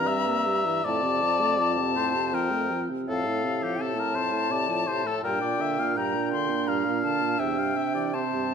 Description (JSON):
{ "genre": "classical, slow romantic movement for wind quintet", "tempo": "83 BPM", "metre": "3/4", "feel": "uneven beats, rubato", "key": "F major", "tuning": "A4 = 439 Hz", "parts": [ { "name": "bright silver concert flute", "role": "melody", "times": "0.0-8.5 s", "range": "F5 to C6", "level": "-29 LUFS", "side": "left 7 dB", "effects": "none" }, { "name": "warm oboe", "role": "second line", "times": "0.0-8.5 s", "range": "G4 to G5", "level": "-28 LUFS", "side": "left 3 dB", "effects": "none" }, { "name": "dark clarinet", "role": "accompaniment", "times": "0.0-8.5 s", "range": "C4 to D4", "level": "-32 LUFS", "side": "right 9 dB", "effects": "none" }, { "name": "mellow French horn", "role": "accompaniment", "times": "0.0-8.5 s", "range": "E2 to Bb3", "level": "-33 LUFS", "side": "right 1 dB", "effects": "none" }, { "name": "mellow bassoon", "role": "bass", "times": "0.0-8.5 s", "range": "F2 to C3", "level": "-32 LUFS", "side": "right 3 dB", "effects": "none" } ], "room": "moderate recital hall reverb, RT60 1.4 s", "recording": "none", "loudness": "-24 LUFS", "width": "side -7 dB against mid", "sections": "0.0-8.5 A section", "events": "none", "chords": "0.0 C7/G; 0.8 F; 5.2 Gm; 7.4 C/E" }